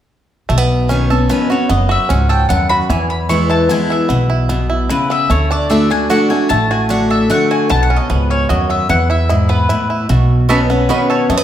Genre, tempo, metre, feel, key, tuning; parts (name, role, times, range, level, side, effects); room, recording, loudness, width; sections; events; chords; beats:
bluegrass; 150 BPM; 3/4; straight; A4 = 440 Hz
bluegrass banjo; melody; 0.5-11.4 s; E3 to A4; -20 LUFS; right 4 dB; tape echo
picked steel-string acoustic guitar; accompaniment; 0.5-11.4 s; E2 to F#4; -16 LUFS; left 1 dB
upright bass; bass; 0.5-11.4 s; F#1 to F#2; -16 LUFS; equal
mandolin; melody; 1.3-11.4 s; B4 to C#6; -19 LUFS; left 3 dB
mandolin; stabs; 10.5-11.0 s; C#4 to B5; -19 LUFS; right 2 dB; tape echo
moderate large studio reverb, RT60 1.4 s; -12 LUFS; side -10 dB against mid
0.5-11.4 A section
0.5 Badd9; 2.9 E; 5.3 D; 7.7 Badd9; 8.9 E; 10.1 Badd9
| 0.50 0.90 1.30 | 1.70 2.10 2.50 | 2.90 3.30 3.70 | 4.10 4.50 4.90 | 5.30 5.70 6.10 | 6.50 6.90 7.30 | 7.70 8.10 8.50 | 8.90 9.30 9.70 | 10.10 10.50 10.90 | 11.30